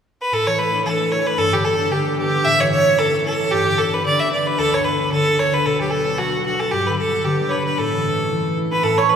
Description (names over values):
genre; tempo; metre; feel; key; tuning
celtic folk, Celtic reel; 225 BPM; 4/4; swing 56% on 8ths; A mixolydian; A4 = 440 Hz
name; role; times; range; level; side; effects
bright fiddle; melody; 0.2-9.2 s; F#4 to E5; -18 LUFS; right 1 dB; none
concert harp; accompaniment; 0.3-9.2 s; D2 to E4; -23 LUFS; left 2 dB; none
cimbalom; second line; 8.7-9.2 s; A4 to C#5; -17 LUFS; right 10 dB; none
room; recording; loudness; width
wet church reverb, RT60 3.5 s; recorded in a church or concert hall; -16 LUFS; side -7 dB against mid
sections
0.3-8.8 A section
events
none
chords
0.3 Asus4; 1.4 G; 2.5 A; 3.5 G; 5.7 Bm; 6.7 G; 7.8 A